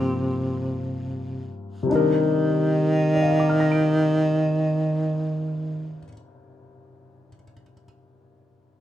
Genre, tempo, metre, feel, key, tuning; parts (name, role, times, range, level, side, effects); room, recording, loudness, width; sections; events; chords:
jazz ballad; 48 BPM; 4/4; swing 68% on 8ths; C minor; A4 = 440 Hz
mellow baritone saxophone; melody; 0.0-6.1 s; C3 to Eb3; -21 LUFS; right 1 dB
warm grand piano; accompaniment; 0.0-8.8 s; G2 to D7; -26 LUFS; left 4 dB
light reverb; minimal, uncompressed stereo recording; -20 LUFS; side -12 dB against mid
0.0-1.9 A section; 1.9-6.9 B section
slowing down 0.0-1.9
0.0 G7sus4; 1.9 Cm9